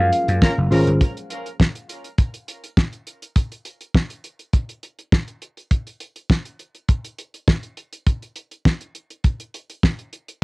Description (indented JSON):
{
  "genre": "early-eighties boogie funk",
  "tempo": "102 BPM",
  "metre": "4/4",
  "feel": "straight",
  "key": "unclear",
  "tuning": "A4 = 440 Hz",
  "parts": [
    { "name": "gliding portamento lead", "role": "melody", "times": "0.0-0.7 s", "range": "F5", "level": "-22 LUFS", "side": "equal", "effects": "chorus, cassette tape, tape echo" },
    { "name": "tine electric piano", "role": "accompaniment", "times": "0.0-1.0 s", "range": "Db4 to C5", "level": "-23 LUFS", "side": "left 1 dB", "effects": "cassette tape, plate reverb" },
    { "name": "chorused pulse-width pad", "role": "sustained chords", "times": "0.0-1.0 s", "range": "F3 to A#3", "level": "-36 LUFS", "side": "left 1 dB", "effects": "none" },
    { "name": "vintage slap bass", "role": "bass", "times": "0.0-1.0 s", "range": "Gb1 to Gb2", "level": "-18 LUFS", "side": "equal", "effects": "none" },
    { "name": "damped 70s drum kit", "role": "drums", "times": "0.1-10.4 s", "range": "hi-hat, kick drum, snare drum", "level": "-18 LUFS", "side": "equal", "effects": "cassette tape" },
    { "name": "mellow horn section", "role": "second line", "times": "0.4-0.9 s", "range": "Db4 to Bb4", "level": "-28 LUFS", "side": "equal", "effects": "cassette tape, plate reverb, tape echo" }
  ],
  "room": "little or no reverb",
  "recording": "home recording on cassette",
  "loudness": "-19 LUFS",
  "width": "side -27 dB against mid",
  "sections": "0.0-1.0 A section; 1.0-10.4 B section",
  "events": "none",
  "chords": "0.0 Gbmaj9; 1.0 N.C.",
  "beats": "0.42 | 1.01 1.60 2.18 2.77 | 3.36 3.95 4.54 5.12 | 5.71 6.30 6.89 7.48 | 8.07 8.65 9.24 9.83"
}